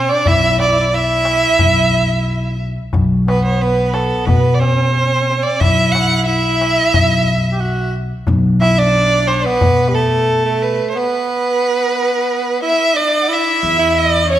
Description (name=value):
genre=Arabic maqam ensemble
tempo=90 BPM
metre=4/4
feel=straight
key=B maqam bayati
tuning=A4 = 439 Hz
part: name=rich violin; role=melody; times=0.0-14.4 s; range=A4 to F#5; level=-16 LUFS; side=right 2 dB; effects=none
part: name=growling tenor saxophone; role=second line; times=0.0-14.4 s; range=G3 to G4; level=-19 LUFS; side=right 1 dB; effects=none
part: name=upright bass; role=bass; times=0.0-14.4 s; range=B1 to B2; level=-18 LUFS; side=equal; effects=none
part: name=darbuka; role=percussion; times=0.3-10.7 s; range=none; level=-21 LUFS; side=left 2 dB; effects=none
part: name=clear studio violin section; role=second line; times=12.6-14.4 s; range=C#5 to F#5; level=-21 LUFS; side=left 2 dB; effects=none
room=wet scoring stage reverb, RT60 1.6 s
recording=recorded in a church or concert hall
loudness=-12 LUFS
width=side -12 dB against mid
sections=0.0-13.6 A section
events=break 11.0-13.6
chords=none